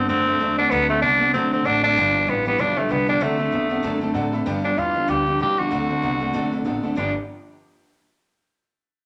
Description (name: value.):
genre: rockabilly.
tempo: 192 BPM.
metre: 4/4.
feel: swing 58% on 8ths.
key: G major.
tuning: A4 = 440 Hz.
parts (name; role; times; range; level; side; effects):
raspy tenor saxophone; melody; 0.0-7.1 s; A3 to G4; -23 LUFS; equal; none.
clear upright piano; accompaniment; 0.0-7.1 s; A4 to B5; -35 LUFS; equal; none.
picked steel-string acoustic guitar; accompaniment; 0.0-7.1 s; G2 to A4; -32 LUFS; equal; none.
electric guitar through a small old amp; riff; 0.0-7.1 s; G2 to G4; -28 LUFS; equal; spring reverb.
upright bass; bass; 0.0-7.1 s; G1 to A2; -33 LUFS; equal; none.
room: moderate large studio reverb, RT60 0.9 s.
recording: none.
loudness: -21 LUFS.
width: mono.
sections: 0.0-4.5 A section; 4.5-7.0 B section; 7.0-8.2 C section.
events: upright piano fill 3.8-4.5, 6.5-7.0.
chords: 0.0 D7; 2.0 G7; 3.2 D7; 4.5 G7; 5.7 D7; 7.0 G7.